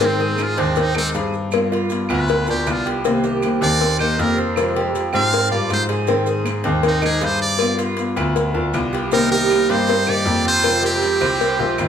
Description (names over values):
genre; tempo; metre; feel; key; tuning
latin, Cuban son and guajira; 158 BPM; 4/4; straight; C minor; A4 = 440 Hz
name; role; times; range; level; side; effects
trumpet with metal mute; melody; 0.0-11.9 s; C4 to F5; -21 LUFS; right 1 dB; none
flamenco guitar; accompaniment; 0.0-11.9 s; C3 to Ab4; -24 LUFS; left 3 dB; none
Cuban tres; arpeggios; 0.0-11.9 s; B3 to Ab4; -23 LUFS; right 6 dB; none
bright grand piano; bass; 0.0-11.9 s; Ab1 to Ab2; -23 LUFS; left 1 dB; none
cowbell; percussion; 0.0-11.9 s; none; -24 LUFS; left 3 dB; none
maracas; percussion; 0.0-11.9 s; none; -40 LUFS; right 5 dB; none
claves; percussion; 0.4-11.9 s; none; -33 LUFS; right 5 dB; none
bright trumpet; second line; 9.1-11.9 s; C4 to G4; -29 LUFS; right 3 dB; none
room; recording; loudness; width
wet large studio reverb, RT60 1.0 s; band playing live in one room; -16 LUFS; side -8 dB against mid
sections
0.0-9.1 A section; 9.1-11.9 B section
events
muted trumpet solo 0.0-9.1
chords
0.0 Ab; 1.5 G7; 3.0 Cm7; 4.6 Fmadd9; 6.1 Ab; 7.6 G7; 9.1 Cm7; 10.6 Fmadd9